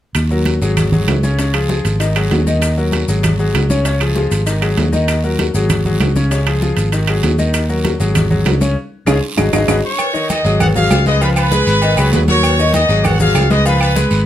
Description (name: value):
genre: latin, salsa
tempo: 196 BPM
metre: 4/4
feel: straight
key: unclear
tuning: A4 = 441 Hz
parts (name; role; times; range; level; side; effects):
- timbales and agogo bells; percussion; 0.1-14.3 s; none; -23 LUFS; right 6 dB; none
- fingered electric bass; bass; 0.2-14.3 s; Ab1 to Eb2; -15 LUFS; equal; none
- bongos and cowbell; percussion; 0.2-14.3 s; none; -28 LUFS; left 4 dB; none
- claves; percussion; 0.2-14.0 s; none; -26 LUFS; right 5 dB; none
- congas; percussion; 0.2-14.3 s; none; -21 LUFS; equal; none
- guiro; percussion; 0.2-14.3 s; none; -30 LUFS; right 6 dB; none
- maracas; percussion; 0.2-14.3 s; none; -31 LUFS; left 6 dB; none
- bright concert grand piano; accompaniment; 0.3-14.2 s; Db3 to F5; -19 LUFS; left 3 dB; none
- clear trumpet section; melody; 9.7-14.3 s; Gb4 to Eb6; -17 LUFS; equal; none
room: moderate studio reverb, RT60 0.6 s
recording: none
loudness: -12 LUFS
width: side -12 dB against mid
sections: 0.2-10.0 A section; 10.0-14.3 B section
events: drum fill 8.8-10.0; band accent 8.8-10.0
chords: 0.2 Ebm; 0.8 Ab7sus4; 1.4 Db; 2.0 Ab5; 2.6 Ebm; 3.2 Ab7sus4; 3.9 Db; 4.5 Ab5; 5.1 Ebm; 5.7 Ab7sus4; 6.3 Db; 6.9 Ab5; 7.5 Ebm; 8.2 Ab7sus4; 8.8 Db; 9.4 Abm7; 11.2 Db7; 11.8 Abm7; 12.4 Ebm7; 13.0 Abm7; 13.7 Db7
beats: | 0.15 0.46 0.77 1.08 | 1.39 1.70 2.00 2.31 | 2.62 2.93 3.24 3.54 | 3.85 4.16 4.47 4.78 | 5.08 5.39 5.70 6.00 | 6.31 6.62 6.93 7.23 | 7.54 7.85 8.15 8.46 | 8.77 9.07 9.38 9.68 | 9.99 10.30 10.60 10.91 | 11.21 11.52 11.82 12.13 | 12.43 12.74 13.04 13.35 | 13.65 13.96